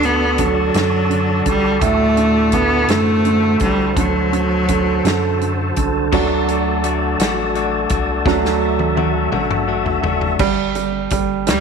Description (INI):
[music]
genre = six-eight pop ballad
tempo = 56 BPM (dotted quarters)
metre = 6/8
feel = straight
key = unclear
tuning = A4 = 438 Hz
[part]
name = bright cello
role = melody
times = 0.0-5.7, 11.5-11.6 s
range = F#3 to B3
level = -17 LUFS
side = left 1 dB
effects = slapback echo
[part]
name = bright concert grand piano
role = accompaniment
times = 0.0-11.6 s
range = A2 to D4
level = -20 LUFS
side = right 10 dB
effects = none
[part]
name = percussive tonewheel organ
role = sustained chords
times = 0.0-10.4 s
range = F#4 to A5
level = -23 LUFS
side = left 1 dB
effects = chorus vibrato, fast rotary speaker
[part]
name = round analog bass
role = bass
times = 0.0-11.6 s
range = F#1 to F#2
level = -24 LUFS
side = left 2 dB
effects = none
[part]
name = natural country drum kit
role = drums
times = 0.0-11.6 s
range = crash cymbal, hi-hat, kick drum, snare drum, toms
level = -22 LUFS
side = left 1 dB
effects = none
[part]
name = direct-recorded clean electric guitar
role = arpeggios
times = 6.1-10.4 s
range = D3 to F#4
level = -23 LUFS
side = left 11 dB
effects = none
[sound]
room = moderate echo chamber reverb, RT60 2.3 s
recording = 1960s-style stereo with parts hard left and right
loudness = -14 LUFS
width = side -6 dB against mid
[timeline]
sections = 0.0-6.1 A section; 6.1-10.4 B section; 10.4-11.6 C section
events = grand piano solo 6.1-10.4; drum fill 8.3-10.4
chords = 0.0 D; 10.4 N.C.